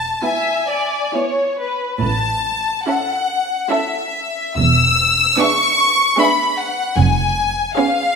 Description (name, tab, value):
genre	classical, slow romantic movement for string orchestra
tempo	65-77 BPM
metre	3/4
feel	rubato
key	unclear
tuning	A4 = 441 Hz
part	rich studio violin section	melody	0.0-8.2 s	E5 to E6	-16 LUFS	left 3 dB	none
part	rich symphonic cello section	bass	0.0-7.6 s	E2 to A2	-21 LUFS	right 4 dB	none
part	warm studio double bass section	bass	0.0-7.6 s	E1 to A1	-20 LUFS	right 3 dB	none
part	rich studio violin section	second line	0.2-8.2 s	G#4 to E5	-22 LUFS	equal	none
part	rich studio viola section	accompaniment	0.2-8.2 s	B3 to E4	-22 LUFS	right 5 dB	none
room	moderate scoring stage reverb, RT60 1.7 s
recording	minimal, uncompressed stereo recording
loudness	-15 LUFS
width	side -5 dB against mid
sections	0.0-8.2 A section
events	none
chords	0.0 E; 2.0 A; 4.6 E7; 7.0 C#7/E#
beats	0.23 1.15 | 2.02 2.87 3.71 | 4.58 5.39 6.19 | 6.98 7.77